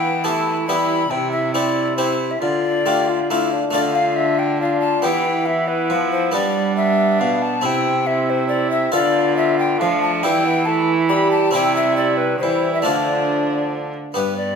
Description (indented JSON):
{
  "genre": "classical, renaissance-style consort dance",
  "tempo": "138 BPM",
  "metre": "3/4",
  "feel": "straight",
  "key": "D dorian",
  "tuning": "A4 = 438 Hz",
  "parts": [
    { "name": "mellow hollow tenor recorder", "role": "melody", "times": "0.0-14.6 s", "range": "B4 to B5", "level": "-21 LUFS", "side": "left 4 dB", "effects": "none" },
    { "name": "warm viola", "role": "second line", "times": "0.0-14.6 s", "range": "B3 to G4", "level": "-23 LUFS", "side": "right 3 dB", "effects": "none" },
    { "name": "harpsichord", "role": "accompaniment", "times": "0.0-14.6 s", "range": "G2 to A4", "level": "-24 LUFS", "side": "left 1 dB", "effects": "none" },
    { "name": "warm bassoon", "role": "accompaniment", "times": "0.0-14.6 s", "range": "F3 to G4", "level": "-25 LUFS", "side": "left 2 dB", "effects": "none" },
    { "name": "rich cello", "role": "bass", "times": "0.0-14.6 s", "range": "G2 to G3", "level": "-24 LUFS", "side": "right 4 dB", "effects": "none" }
  ],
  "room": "moderate recital hall reverb, RT60 1.4 s",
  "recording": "minimal, uncompressed stereo recording",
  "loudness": "-16 LUFS",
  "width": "side -6 dB against mid",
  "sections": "0.0-3.7 A section; 3.7-14.2 A section",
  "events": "none",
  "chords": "0.0 Em; 1.1 C; 2.4 Dm; 5.0 Em; 6.3 G; 7.6 C; 8.9 Dm; 10.2 Em; 11.5 C; 12.9 Dm"
}